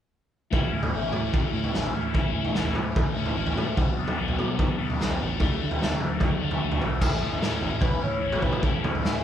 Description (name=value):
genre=indie rock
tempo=148 BPM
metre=4/4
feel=straight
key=A major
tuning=A4 = 440 Hz
part: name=crunchy overdriven guitar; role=riff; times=0.5-9.2 s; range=A2 to E4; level=-29 LUFS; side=left 5 dB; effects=phaser
part: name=fingered electric bass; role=bass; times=0.5-9.2 s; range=A1 to D3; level=-32 LUFS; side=equal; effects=none
part: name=raw garage drum kit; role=drums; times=0.5-9.1 s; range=crash cymbal, kick drum, snare drum, toms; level=-25 LUFS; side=right 1 dB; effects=none
part: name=electric guitar through a small old amp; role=melody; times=6.8-9.2 s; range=E4 to C#5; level=-33 LUFS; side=left 2 dB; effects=spring reverb
room=light reverb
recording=band playing live in one room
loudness=-23 LUFS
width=side -10 dB against mid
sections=0.5-7.0 A section; 7.0-9.2 B section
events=none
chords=0.5 A; 3.8 Bm; 5.4 D; 7.0 A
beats=| 0.52 0.93 1.34 1.74 | 2.15 2.56 2.96 3.37 | 3.77 4.18 4.58 4.99 | 5.39 5.80 6.21 6.61 | 7.02 7.42 7.83 8.23 | 8.64 9.04